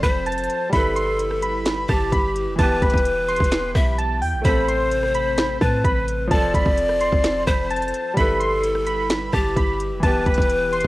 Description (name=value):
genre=hip hop, trap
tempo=129 BPM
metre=4/4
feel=half-time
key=unclear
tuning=A4 = 441 Hz
part: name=warbly lo-fi synth keys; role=melody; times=0.0-10.9 s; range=G5 to C6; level=-25 LUFS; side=right 1 dB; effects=chorus, low-pass filter, cassette tape
part: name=breathy bright large pan pipes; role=second line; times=0.0-10.9 s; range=G4 to E5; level=-23 LUFS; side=left 2 dB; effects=cassette tape, analog delay
part: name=clear concert grand piano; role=accompaniment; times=0.0-10.9 s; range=E3 to B4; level=-29 LUFS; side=right 1 dB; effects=low-pass filter, cassette tape
part: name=airy breathy pad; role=sustained chords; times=0.0-10.9 s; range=C3 to B4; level=-32 LUFS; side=right 1 dB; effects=chorus, cassette tape
part: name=clean 808-style bass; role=bass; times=0.0-10.9 s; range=E1 to A2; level=-26 LUFS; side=equal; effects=none
part: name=trap drum kit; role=drums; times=0.0-10.9 s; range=finger snaps, hi-hat, kick drum, rim click, snare drum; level=-22 LUFS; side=equal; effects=cassette tape
room=little or no reverb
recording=home recording on cassette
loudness=-18 LUFS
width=side -18 dB against mid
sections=0.0-10.9 A section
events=none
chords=0.0 F; 0.7 G6; 2.6 Em; 4.4 Amadd9; 6.3 F; 8.2 G6; 10.0 Em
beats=0.26 | 0.73 1.19 1.66 2.12 | 2.59 3.05 3.52 3.98 | 4.45 4.91 5.38 5.84 | 6.31 6.77 7.24 7.71 | 8.17 8.63 9.10 9.56 | 10.03 10.49